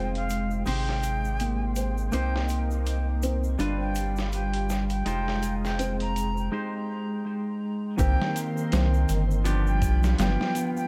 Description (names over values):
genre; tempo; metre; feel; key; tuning
trip hop; 82 BPM; 4/4; swing 57% on 16ths; C minor; A4 = 441 Hz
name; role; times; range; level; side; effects
jazz flute; melody; 0.0-10.9 s; F5 to Bb5; -37 LUFS; equal; tape echo
semi-hollow electric guitar; accompaniment; 0.0-10.9 s; Eb3 to C5; -34 LUFS; equal; harmonic tremolo, tape echo
string machine, cellos; sustained chords; 0.0-10.9 s; Ab3 to Eb6; -41 LUFS; equal; phaser, ensemble chorus, vintage 12-bit sampler grit
felt-muted upright piano; arpeggios; 0.0-10.9 s; C3 to C5; -37 LUFS; equal; low-pass filter, analog delay
round analog bass; bass; 0.0-10.4 s; F1 to C2; -29 LUFS; equal; none
dusty soul sampler-style drum kit; drums; 0.2-10.7 s; hi-hat, kick drum, snare drum; -34 LUFS; equal; high-pass filter on hats, vintage 12-bit sampler grit, studio reverb, high-pass filter on snare, high-pass filter on kick, analog delay
tube shaker; percussion; 0.3-10.9 s; none; -46 LUFS; equal; none
room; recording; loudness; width
small room ambience; echo-heavy mix; -27 LUFS; mono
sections
0.0-8.0 A section; 8.0-10.9 B section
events
break 6.5-8.0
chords
0.0 Fm7; 0.7 Abmaj7; 2.1 Cm7; 3.6 G7; 5.1 Fm7; 6.5 Abmaj7; 8.0 Cm7; 9.5 G7